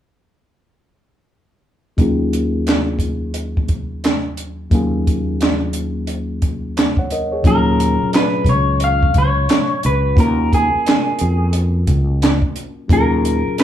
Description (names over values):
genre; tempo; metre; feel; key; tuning
R&B, neo-soul; 88 BPM; 4/4; swing 62% on 16ths; Eb minor; A4 = 440 Hz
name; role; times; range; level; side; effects
reed electric piano; accompaniment; 2.0-13.6 s; Bb2 to Gb5; -22 LUFS; left 2 dB; phaser, low-pass filter
fretless electric bass; bass; 2.0-13.5 s; Db2 to F2; -19 LUFS; equal; none
compact cocktail drum kit; drums; 2.0-13.6 s; handclaps, hi-hat, kick drum, snare drum; -17 LUFS; right 1 dB; none
electric guitar through a small old amp; melody; 7.5-13.6 s; Ab4 to F5; -19 LUFS; left 1 dB; spring reverb
room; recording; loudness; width
moderate studio reverb, RT60 0.5 s; band playing live in one room; -15 LUFS; side -10 dB against mid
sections
2.0-7.4 A section; 7.4-13.6 B section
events
filter sweep on reed electric piano 2.0-7.4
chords
2.0 Ebm11